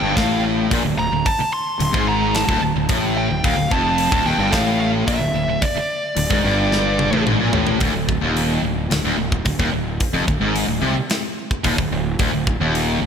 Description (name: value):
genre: heavy metal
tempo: 110 BPM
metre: 4/4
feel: straight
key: D minor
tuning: A4 = 442 Hz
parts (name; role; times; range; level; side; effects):
- high-gain lead guitar; melody; 0.0-7.2 s; D5 to C6; -22 LUFS; right 1 dB; distortion, slapback echo, ping-pong delay
- distorted electric guitar; riff; 0.0-13.1 s; D2 to C3; -22 LUFS; left 9 dB; overdrive
- high-gain distorted guitar; riff; 0.0-13.1 s; D2 to C3; -23 LUFS; right 11 dB; distortion
- fuzz fingered electric bass; bass; 0.0-13.1 s; D1 to C2; -25 LUFS; equal; overdrive
- tight metal drum kit; drums; 0.2-12.9 s; hi-hat, kick drum, snare drum, toms; -23 LUFS; equal; none
room: moderate lush hall reverb, RT60 2.6 s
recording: big arena sound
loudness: -17 LUFS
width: side -7 dB against mid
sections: 0.0-7.8 A section; 7.8-13.1 B section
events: drum fill 6.7-7.8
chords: 0.0 Dm; 7.8 N.C.